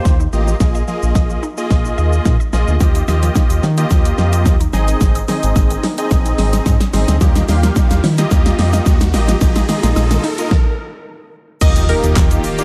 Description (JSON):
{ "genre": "dance-pop", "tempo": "109 BPM", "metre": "4/4", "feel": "straight", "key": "Eb major", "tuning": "A4 = 441 Hz", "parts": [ { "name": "big bright polysynth", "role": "accompaniment", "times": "0.0-12.6 s", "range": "Bb3 to F5", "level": "-23 LUFS", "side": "equal", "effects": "sidechain pumping" }, { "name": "unison pluck", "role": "arpeggios", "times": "0.1-10.3 s", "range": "Eb3 to Eb6", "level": "-30 LUFS", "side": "equal", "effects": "none" }, { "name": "round analog bass", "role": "bass", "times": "0.1-12.4 s", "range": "Ab1 to Eb3", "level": "-18 LUFS", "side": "equal", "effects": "sidechain pumping" }, { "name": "pop drum kit", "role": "drums", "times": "0.1-12.6 s", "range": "crash cymbal, handclaps, hi-hat, kick drum, shaker, snare drum", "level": "-18 LUFS", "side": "equal", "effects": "none" }, { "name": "egg shaker", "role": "percussion", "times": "2.8-12.6 s", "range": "none", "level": "-38 LUFS", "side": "equal", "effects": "none" }, { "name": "riser and impact", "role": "sound effects", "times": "4.7-12.6 s", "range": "none", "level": "-30 LUFS", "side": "equal", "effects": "none" }, { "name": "analog pluck", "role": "melody", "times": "11.6-12.4 s", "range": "Bb4 to Eb5", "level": "-24 LUFS", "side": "equal", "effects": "chorus, sidechain pumping" }, { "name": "soft supersaw", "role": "sustained chords", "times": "11.6-12.6 s", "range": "Eb3 to G4", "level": "-26 LUFS", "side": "equal", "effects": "sidechain pumping" } ], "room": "digital ambience", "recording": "none", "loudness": "-15 LUFS", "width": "mono", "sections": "0.0-11.6 A section; 11.6-12.6 B section", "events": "build-up 0.0-11.6; drum fill 0.0-10.5; riser 4.7-11.6; stop 10.5-11.6; drop 11.6-12.6; impact 11.6-12.6", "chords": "0.0 Ebadd9; 0.6 Bb7sus4; 2.8 Ebadd9; 4.7 Ab; 7.2 Ebadd9; 9.4 Bbsus4; 11.6 Ebadd9", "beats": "0.05 | 0.60 1.16 1.71 2.26 | 2.81 3.36 3.91 4.46 | 5.01 5.56 6.11 6.66 | 7.21 7.76 8.31 8.86 | 9.41 9.96 10.51 11.06 | 11.61 12.16" }